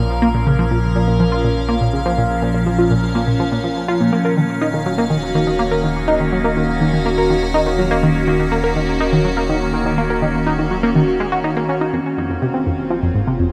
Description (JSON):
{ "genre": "ambient, sequencer-driven space music", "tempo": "123 BPM", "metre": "4/4", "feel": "straight", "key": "unclear", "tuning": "A4 = 440 Hz", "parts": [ { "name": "evolving wavetable pad", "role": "sustained chords", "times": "0.0-13.5 s", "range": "Bb2 to F5", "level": "-21 LUFS", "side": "equal", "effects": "phaser, built-in reverb" }, { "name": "round analog bass", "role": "bass", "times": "0.0-13.5 s", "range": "Eb1 to Bb1", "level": "-28 LUFS", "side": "equal", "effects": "tube saturation" }, { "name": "tight sequenced synth", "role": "riff", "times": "0.2-13.5 s", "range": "F2 to Bb4", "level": "-20 LUFS", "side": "equal", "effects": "chorus, phaser, delay" }, { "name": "Celtic harp", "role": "arpeggios", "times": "11.9-13.5 s", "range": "Ab3 to Ab4", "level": "-42 LUFS", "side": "equal", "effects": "none" } ], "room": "wet huge ambient reverb, RT60 8.4 s", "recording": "none", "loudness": "-17 LUFS", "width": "mono", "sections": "0.0-11.9 A section; 11.9-13.5 B section", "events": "none", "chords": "0.0 Bbm; 4.1 Ebm7; 11.9 Fm" }